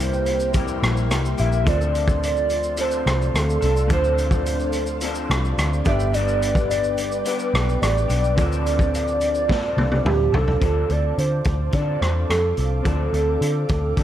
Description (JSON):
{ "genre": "indie pop, bedroom pop", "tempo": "107 BPM", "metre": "4/4", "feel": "straight", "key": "D minor", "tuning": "A4 = 440 Hz", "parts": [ { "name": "warbly nostalgic lead", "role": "melody", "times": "0.0-14.0 s", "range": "G4 to E5", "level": "-24 LUFS", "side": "right 2 dB", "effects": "wide subtle chorus, analog delay" }, { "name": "electric guitar through a small old amp", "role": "accompaniment", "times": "0.0-14.0 s", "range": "G2 to A4", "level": "-29 LUFS", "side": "left 6 dB", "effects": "analog chorus, warbly pitch drift" }, { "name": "warm analog keys", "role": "accompaniment", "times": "0.0-14.0 s", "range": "G3 to D5", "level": "-33 LUFS", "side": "right 5 dB", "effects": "chorus" }, { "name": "ethereal airy pad", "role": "sustained chords", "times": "0.0-14.0 s", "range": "A4 to D6", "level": "-33 LUFS", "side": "left 1 dB", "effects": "ensemble chorus, built-in reverb" }, { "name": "vintage muted picked electric bass", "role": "bass", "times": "0.0-14.0 s", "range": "G1 to D3", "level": "-23 LUFS", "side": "equal", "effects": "none" }, { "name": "raw garage drum kit", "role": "drums", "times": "0.0-14.0 s", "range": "hi-hat, kick drum, rim click, shaker, snare drum, toms", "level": "-24 LUFS", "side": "equal", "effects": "none" } ], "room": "light reverb, small room ambience", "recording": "dark, warm production", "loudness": "-18 LUFS", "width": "side -11 dB against mid", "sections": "0.0-10.6 A section; 10.6-14.0 B section", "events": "drum fill 9.5-10.6", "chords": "0.0 C7; 1.7 Dm7; 5.9 G; 8.4 Dm7" }